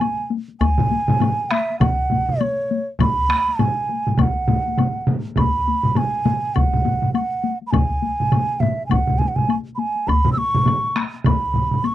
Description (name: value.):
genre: japanese traditional, taiko drum ensemble.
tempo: 101 BPM.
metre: 4/4.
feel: swing 60% on 16ths.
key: F# suspended pentatonic.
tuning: A4 = 440 Hz.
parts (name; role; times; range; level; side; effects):
mellow hollow bansuri; melody; 0.0-11.9 s; C#5 to E6; -22 LUFS; right 3 dB; none.
taiko ensemble; percussion; 0.0-11.9 s; none; -25 LUFS; left 8 dB; none.
woodblock; percussion; 0.0-11.9 s; none; -30 LUFS; left 11 dB; none.
taiko ensemble; percussion; 0.6-11.4 s; none; -23 LUFS; left 1 dB; none.
solo taiko drums; percussion; 0.8-11.8 s; none; -23 LUFS; right 3 dB; none.
taiko ensemble; percussion; 0.8-11.8 s; none; -24 LUFS; left 3 dB; none.
room: little or no reverb.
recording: dry, close 1970s-style studio recording.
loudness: -17 LUFS.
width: side -13 dB against mid.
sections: 0.0-11.9 A section.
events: none.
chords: none.